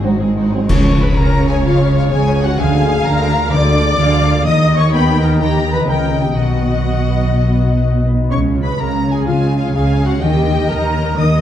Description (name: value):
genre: cinematic, heroic adventure film score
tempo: 126 BPM (dotted quarters)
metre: 12/8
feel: straight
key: Db mixolydian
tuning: A4 = 442 Hz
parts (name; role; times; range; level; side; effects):
- warm symphonic violin section; melody; 0.0-11.4 s; C5 to Eb6; -24 LUFS; left 3 dB; none
- warm symphonic violin section; second line; 0.0-11.4 s; Gb4 to Bb5; -24 LUFS; left 4 dB; none
- warm symphonic viola section; accompaniment; 0.0-11.4 s; Cb4 to Eb5; -22 LUFS; equal; none
- warm trombone section; sustained chords; 0.0-0.6 s; Gb3 to C4; -27 LUFS; right 2 dB; none
- concert harp; arpeggios; 0.0-11.4 s; Ab2 to Bb5; -21 LUFS; left 7 dB; none
- dark symphonic cello section; bass; 0.0-11.4 s; Ab2 to Eb3; -17 LUFS; right 2 dB; none
- rich symphonic double bass section; bass; 0.0-11.4 s; Ab1 to Eb2; -18 LUFS; right 2 dB; none
- clash cymbals and concert bass drum; percussion; 0.7-1.3 s; none; -20 LUFS; equal; none
- timpani; percussion; 0.7-1.1 s; Db3; -22 LUFS; equal; none
room: wet recital hall reverb, RT60 1.4 s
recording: dark, warm production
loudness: -12 LUFS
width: side -10 dB against mid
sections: 0.7-11.4 A section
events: band accent 0.7-1.0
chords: 0.0 Ab7; 0.7 Db; 2.6 Bb7/D; 4.5 Eb; 6.4 Cb; 8.3 Db; 10.2 Eb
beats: 0.20 | 0.69 1.17 1.65 2.12 | 2.59 3.06 3.53 4.00 | 4.47 4.94 5.41 5.89 | 6.37 6.86 7.35 7.83 | 8.31 8.79 9.27 9.75 | 10.22 10.70 11.18